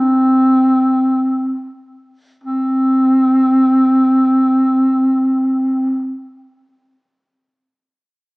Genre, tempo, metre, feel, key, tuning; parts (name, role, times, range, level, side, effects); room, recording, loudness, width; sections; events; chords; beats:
turkish; free time; A4 = 442 Hz
breathy clarinet; solo; 0.0-6.1 s; C4; -12 LUFS; equal
wet recital hall reverb, RT60 1.6 s; recorded in a church or concert hall, small speaker sound; -12 LUFS; side -30 dB against mid
0.0-2.4 A section; 2.4-5.3 B section
slowing down 0.0-2.4
free time